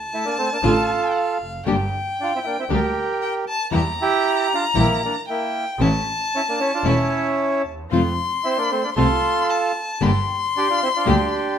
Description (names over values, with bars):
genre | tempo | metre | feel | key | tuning
tango | 115 BPM | 4/4 | rubato | unclear | A4 = 438 Hz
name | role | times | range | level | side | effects
dark violin | second line | 0.0-11.6 s | F5 to C6 | -24 LUFS | left 4 dB | none
bandoneon | melody | 0.1-11.6 s | A3 to Bb4 | -22 LUFS | right 3 dB | none
nylon-string guitar | accompaniment | 0.6-11.2 s | C3 to G4 | -22 LUFS | left 4 dB | none
muted studio string section | stabs | 0.6-11.3 s | A3 to A4 | -29 LUFS | equal | none
bright double bass | bass | 0.6-11.3 s | E1 to F2 | -24 LUFS | right 2 dB | none
room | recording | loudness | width
moderate large studio reverb, RT60 0.9 s | minimal, uncompressed stereo recording | -18 LUFS | side -8 dB against mid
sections
0.0-11.6 A section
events
none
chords
0.0 Dm; 1.7 Gm; 3.7 Edim; 5.8 A; 7.9 F; 10.0 Gm